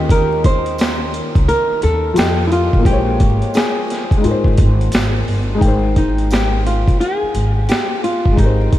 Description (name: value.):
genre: lo-fi hip hop.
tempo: 87 BPM.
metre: 4/4.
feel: swing 64% on 16ths.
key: Ab major.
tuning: A4 = 440 Hz.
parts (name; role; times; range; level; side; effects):
nylon-string guitar; melody; 0.0-8.8 s; Eb4 to C5; -20 LUFS; equal; low-pass filter, diffuse ambient delay.
felt-muted upright piano; accompaniment; 0.0-8.8 s; Eb3 to G5; -21 LUFS; left 2 dB; cassette tape, low-pass filter.
upright bass; bass; 0.0-8.8 s; G1 to Ab2; -18 LUFS; equal; none.
boom bap sampler-style drum kit; drums; 0.1-8.8 s; hi-hat, kick drum, snare drum; -17 LUFS; equal; none.
tambourine; percussion; 0.8-7.9 s; none; -43 LUFS; right 5 dB; none.
room: light reverb, studio ambience.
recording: vinyl crackle.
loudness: -13 LUFS.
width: side -13 dB against mid.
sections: 0.0-5.6 A section; 5.6-8.8 B section.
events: none.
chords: 0.0 Eb7; 2.2 F7; 2.9 Bbm7; 4.2 Ab6; 5.6 Abmaj7.